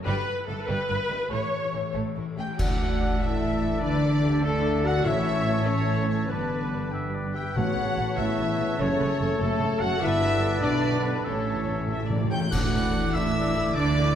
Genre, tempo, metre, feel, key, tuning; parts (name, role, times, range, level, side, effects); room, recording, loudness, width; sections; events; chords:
cinematic, heroic adventure film score; 97 BPM (dotted quarters); 6/8; straight; A mixolydian; A4 = 440 Hz
concert harp; arpeggios; 0.0-14.2 s; F#2 to E6; -35 LUFS; left 7 dB
warm symphonic violin section; melody; 0.1-14.2 s; A4 to G6; -37 LUFS; left 5 dB
warm symphonic violin section; second line; 0.1-14.2 s; G3 to G5; -38 LUFS; left 2 dB
rich chamber viola section; accompaniment; 0.1-14.2 s; E3 to E5; -34 LUFS; left 1 dB
warm symphonic cello section; bass; 0.1-14.2 s; F#2 to D3; -30 LUFS; right 2 dB
warm symphonic double bass section; bass; 0.1-14.2 s; F#1 to D2; -32 LUFS; right 3 dB
cymbal swell, clash cymbals and concert bass drum; percussion; 0.1-3.4, 10.0-13.3 s; -31 LUFS; equal
dark French horn section; sustained chords; 2.4-14.2 s; A3 to G4; -30 LUFS; left 3 dB
warm trumpet section; stabs; 2.4-14.2 s; A4 to G5; -32 LUFS; equal
clear clarinet; second line; 2.6-14.2 s; E4 to D5; -36 LUFS; left 2 dB
silver concert flute; second line; 2.6-14.2 s; G5 to D6; -38 LUFS; equal
warm oboe; second line; 2.6-14.2 s; C#5 to G5; -36 LUFS; equal
mellow trombone section; sustained chords; 2.6-14.2 s; C#3 to D4; -35 LUFS; right 3 dB
timpani; percussion; 5.1-8.1, 11.3-12.5 s; A2; -34 LUFS; left 1 dB
moderate concert hall reverb, RT60 2.1 s; -23 LUFS; side -9 dB against mid
0.0-2.6 A section; 2.6-12.5 B section; 12.5-14.2 C section
band accent 2.6-3.0, 12.5-12.9; timpani fill 11.3-12.5
0.1 Em/G; 1.3 A; 2.6 Asus4; 3.8 Dsus2; 5.1 A; 6.3 G; 7.6 Aadd9; 8.8 F#m; 10.0 Gadd9; 11.3 A; 12.5 Asus4